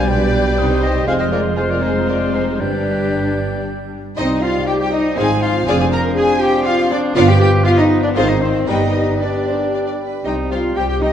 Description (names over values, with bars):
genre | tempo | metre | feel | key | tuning
quick classical-period movement for symphony orchestra | 113-123 BPM | 3/4 | rubato | C minor | A4 = 440 Hz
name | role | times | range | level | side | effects
warm studio violin section | melody | 0.0-11.1 s | G4 to Bb5 | -26 LUFS | left 3 dB | none
clear clarinet | second line | 0.0-11.1 s | B4 to Ab5 | -26 LUFS | left 1 dB | none
clear cor anglais | second line | 0.0-11.1 s | C4 to D5 | -27 LUFS | right 2 dB | none
concert flute | second line | 0.0-11.1 s | C5 to G6 | -26 LUFS | left 2 dB | none
warm studio violin section | second line | 0.0-11.1 s | D4 to G5 | -27 LUFS | left 3 dB | none
rich studio viola section | accompaniment | 0.0-11.1 s | G3 to Ab4 | -26 LUFS | equal | none
warm bassoon | accompaniment | 0.0-11.0 s | Eb3 to Ab3 | -24 LUFS | right 3 dB | none
mellow French horn section | sustained chords | 0.0-11.1 s | G3 to G4 | -22 LUFS | left 4 dB | none
dark studio cello section | bass | 0.0-11.1 s | F2 to Bb4 | -21 LUFS | right 2 dB | none
warm studio double bass section | bass | 0.0-11.1 s | F1 to C2 | -21 LUFS | right 2 dB | none
room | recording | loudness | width
wet scoring stage reverb, RT60 2.1 s | dark, warm production | -14 LUFS | side -9 dB against mid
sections
0.0-4.2 A section; 4.2-11.1 B section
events
none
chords
0.0 G/B; 0.6 Cm; 1.1 Fm; 2.6 G; 4.2 Cm; 5.2 Ab6; 5.7 Dm7b5/F; 7.2 G7; 8.2 Ab; 8.7 G; 10.2 Cm